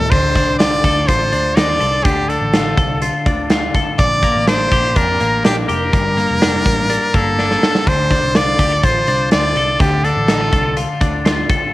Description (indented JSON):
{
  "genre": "jangly indie pop",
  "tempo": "124 BPM",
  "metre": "4/4",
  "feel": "straight",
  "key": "unclear",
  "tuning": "A4 = 440 Hz",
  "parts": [
    { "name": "brilliant trumpet", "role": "melody", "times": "0.0-10.8 s", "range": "G4 to D5", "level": "-17 LUFS", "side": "equal", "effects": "cassette tape" },
    { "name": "twelve-string electric guitar", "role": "arpeggios", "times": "0.1-11.7 s", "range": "G2 to A4", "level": "-19 LUFS", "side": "left 3 dB", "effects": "none" },
    { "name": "vintage muted picked electric bass", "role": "bass", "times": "0.1-11.4 s", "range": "F1 to F2", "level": "-22 LUFS", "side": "equal", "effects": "none" },
    { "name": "big rock drum kit", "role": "drums", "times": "0.1-11.6 s", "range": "crash cymbal, hi-hat, kick drum, snare drum", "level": "-17 LUFS", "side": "right 1 dB", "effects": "cassette tape" }
  ],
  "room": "light reverb, studio ambience",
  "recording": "home recording on cassette",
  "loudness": "-13 LUFS",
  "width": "side -17 dB against mid",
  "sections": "0.1-11.7 A section",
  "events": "drum fill 7.4-7.9",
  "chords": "0.1 Dm; 4.0 Bb6; 7.9 Dm",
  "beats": "| 0.12 0.60 1.08 1.57 | 2.06 2.54 3.02 3.51 | 3.99 4.48 4.96 5.45 | 5.93 6.41 6.90 7.38 | 7.87 8.35 8.84 9.32 | 9.80 10.29 10.77 11.25"
}